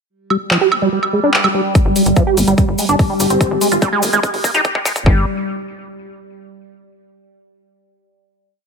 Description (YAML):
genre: psychedelic trance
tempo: 145 BPM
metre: 4/4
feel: straight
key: unclear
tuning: A4 = 439 Hz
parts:
  - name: overtone-sweeping drone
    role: sustained chords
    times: 0.8-5.1 s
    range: G3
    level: -20 LUFS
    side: left 1 dB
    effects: chorus, built-in reverb, phaser, sidechain pumping
  - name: liquid acid bass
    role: riff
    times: 0.3-5.3 s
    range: F3 to G4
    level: -18 LUFS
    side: moving between left 4 dB and right 5 dB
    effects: chorus, auto-pan, vintage 12-bit sampler grit, sidechain pumping, digital delay
  - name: big-room dance drum kit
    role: drums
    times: 0.3-5.0 s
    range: handclaps, hi-hat, woodblock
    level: -20 LUFS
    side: right 2 dB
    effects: overdrive
  - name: electronic kick drum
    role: drums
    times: 1.8-5.1 s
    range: none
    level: -15 LUFS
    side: equal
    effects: overdrive
  - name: cabasa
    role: percussion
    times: 1.8-5.0 s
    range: none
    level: -24 LUFS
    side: left 4 dB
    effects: none
  - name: tight sequencer bass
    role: bass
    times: 1.9-5.3 s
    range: G1 to Ab1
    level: -20 LUFS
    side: equal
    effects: none
  - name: resonant blip pluck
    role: second line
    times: 3.3-5.1 s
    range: C4 to G4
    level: -25 LUFS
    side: right 1 dB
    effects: phaser, wide subtle chorus, sidechain pumping, high-pass filter, digital delay
room: light reverb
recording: high-pass filter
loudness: -13 LUFS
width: side -5 dB against mid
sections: 0.1-1.8 intro; 1.8-5.1 build; 5.1-6.7 final chord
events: build-up 1.8-5.1; filter sweep on acid bass 1.8-5.1; filter sweep on synth drone 1.8-5.1; filter sweep 1.8-5.1; drum fill 3.4-5.1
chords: 0.1 G5; 3.4 Ab5; 5.1 N.C.